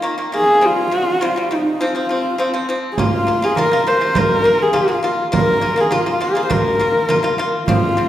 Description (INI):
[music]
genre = mongolian traditional, Mongolian folk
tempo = 102 BPM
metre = 4/4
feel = straight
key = unclear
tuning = A4 = 439 Hz
[part]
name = dark horsehead fiddle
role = melody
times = 0.0-8.1 s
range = Eb4 to C5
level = -16 LUFS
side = equal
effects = none
[part]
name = pipa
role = arpeggios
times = 0.0-8.1 s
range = C3 to F4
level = -21 LUFS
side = left 1 dB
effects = none
[part]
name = frame drum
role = percussion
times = 3.0-7.8 s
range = none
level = -20 LUFS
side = right 3 dB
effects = none
[sound]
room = wet recital hall reverb, RT60 1.7 s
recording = recorded in a church or concert hall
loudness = -14 LUFS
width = side -12 dB against mid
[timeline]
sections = 0.0-3.0 A section; 3.0-8.1 B section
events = none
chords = 0.0 Eb5; 0.6 C5; 1.8 F5; 3.0 Bb5